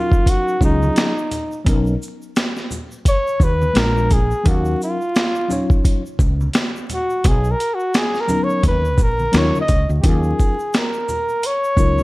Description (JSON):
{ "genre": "hip hop, jazz-hop", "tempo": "86 BPM", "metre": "4/4", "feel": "swing 57% on 16ths", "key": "Eb minor", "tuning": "A4 = 440 Hz", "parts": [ { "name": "breathy flugelhorn", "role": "melody", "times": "0.0-12.0 s", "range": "Eb4 to Eb5", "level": "-20 LUFS", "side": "equal", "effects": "slapback echo" }, { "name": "mellow tine electric piano", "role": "accompaniment", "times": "0.0-12.0 s", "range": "Gb3 to F5", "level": "-23 LUFS", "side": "left 2 dB", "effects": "medium stereo tremolo" }, { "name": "boom bap sampler-style drum kit", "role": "drums", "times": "0.1-12.0 s", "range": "hi-hat, kick drum, shaker, snare drum", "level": "-17 LUFS", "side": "equal", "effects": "none" }, { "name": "tube shaker and congas", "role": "percussion", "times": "0.1-12.0 s", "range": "none", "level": "-32 LUFS", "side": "right 1 dB", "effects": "none" }, { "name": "woody fretless electric bass", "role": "bass", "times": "0.6-12.0 s", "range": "Bb1 to D#2", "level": "-19 LUFS", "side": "equal", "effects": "none" } ], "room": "little or no reverb", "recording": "dark, warm production, vinyl crackle", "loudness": "-16 LUFS", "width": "side -20 dB against mid", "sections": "0.0-10.0 A section; 10.0-12.0 B section", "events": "flugelhorn solo 0.0-10.0", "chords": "0.0 Ebm9; 1.7 Bmaj9; 3.8 Bb7; 4.5 Ebm9; 7.2 Bmaj9; 9.3 Ebm9" }